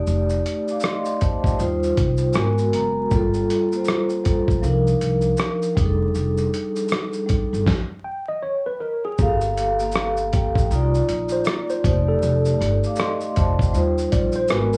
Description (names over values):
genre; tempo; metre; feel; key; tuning
lo-fi hip hop; 79 BPM; 4/4; swing 63% on 16ths; unclear; A4 = 439 Hz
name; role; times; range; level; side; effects
vibraphone with soft mallets; accompaniment; 0.0-14.8 s; F3 to D6; -24 LUFS; equal; low-pass filter
upright bass; bass; 0.1-14.8 s; F1 to Eb2; -25 LUFS; equal; none
dusty soul sampler-style drum kit; drums; 0.1-14.8 s; hi-hat, kick drum, rim click, shaker, snare drum; -25 LUFS; equal; none
tine electric piano; second line; 8.0-14.8 s; Ab4 to G5; -28 LUFS; equal; analog chorus, low-pass filter, analog delay
room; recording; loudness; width
moderate studio ambience, RT60 0.5 s; vinyl crackle, small room ambience; -21 LUFS; mono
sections
0.0-9.2 A section; 9.2-14.8 B section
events
vibraphone fill 2.0-3.1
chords
0.0 F13; 1.6 Eb69; 2.3 Abm9; 3.1 Gm9; 4.6 Cm11; 5.8 F13; 7.7 N.C.; 9.2 Gm9; 10.7 Cm11; 11.8 F13; 13.7 Eb69